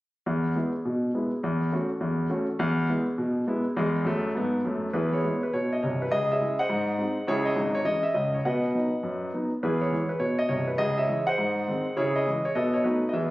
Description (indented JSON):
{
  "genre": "jazz, stride piano",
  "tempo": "205 BPM",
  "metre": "4/4",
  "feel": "swing 64% on 8ths",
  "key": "E major",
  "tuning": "A4 = 438 Hz",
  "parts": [
    { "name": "clear concert grand piano", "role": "solo", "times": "0.3-13.3 s", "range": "C1 to F#5", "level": "-24 LUFS", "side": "equal", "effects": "none" }
  ],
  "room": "moderate club reverb, RT60 0.7 s",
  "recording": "recorded on a phone in the room, studio reverb",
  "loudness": "-24 LUFS",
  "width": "side -18 dB against mid",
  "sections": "0.3-4.9 A section; 4.9-13.3 B section",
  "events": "none",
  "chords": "0.3 E; 1.4 F#m7/E; 2.6 E; 3.8 A5/E; 4.9 E; 6.1 C#m; 6.7 G#7; 7.3 C#m; 8.5 B; 9.6 E; 10.8 C#m; 11.4 G#7; 12.0 C#m; 12.6 B7",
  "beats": "| 0.26 0.55 0.84 1.13 | 1.43 1.72 2.01 2.30 | 2.60 2.89 3.18 3.47 | 3.77 4.06 4.35 4.64 | 4.94 5.23 5.52 5.82 | 6.11 6.40 6.69 6.99 | 7.28 7.57 7.87 8.16 | 8.45 8.74 9.04 9.33 | 9.62 9.92 10.21 10.50 | 10.79 11.09 11.38 11.67 | 11.97 12.26 12.55 12.85 | 13.14"
}